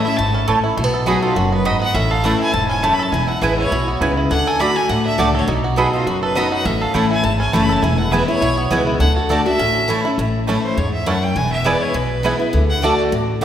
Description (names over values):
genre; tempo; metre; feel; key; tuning
bluegrass; 204 BPM; 4/4; swing 54% on 8ths; A major; A4 = 441 Hz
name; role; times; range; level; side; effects
clear fiddle; melody; 0.0-13.0 s; F4 to B5; -22 LUFS; equal; none
picked steel-string acoustic guitar; accompaniment; 0.0-13.4 s; E2 to F#4; -20 LUFS; left 2 dB; none
bluegrass banjo; arpeggios; 0.0-13.4 s; A3 to A4; -24 LUFS; right 2 dB; none
upright bass; bass; 0.2-13.4 s; E1 to E2; -22 LUFS; equal; none
mandolin; stabs; 0.5-13.4 s; A3 to B5; -23 LUFS; right 3 dB; none
room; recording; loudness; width
wet scoring stage reverb, RT60 1.9 s; recorded in a church or concert hall; -15 LUFS; side -10 dB against mid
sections
0.8-10.2 A section; 10.2-13.4 B section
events
fiddle solo 10.2-13.4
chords
0.0 A; 0.8 B; 1.9 A; 3.1 E; 4.3 D; 5.5 B; 6.7 A; 7.8 E; 9.0 D; 9.6 A; 11.4 E; 12.5 D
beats
0.18 0.48 | 0.77 1.07 1.36 1.66 | 1.95 2.24 2.54 2.83 | 3.13 3.42 3.71 4.01 | 4.30 4.60 4.89 5.18 | 5.48 5.77 6.07 6.36 | 6.66 6.95 7.24 7.54 | 7.83 8.13 8.42 8.71 | 9.01 9.30 9.60 9.89 | 10.18 10.48 10.77 11.07 | 11.36 11.65 11.95 12.24 | 12.54 12.83 13.12 13.42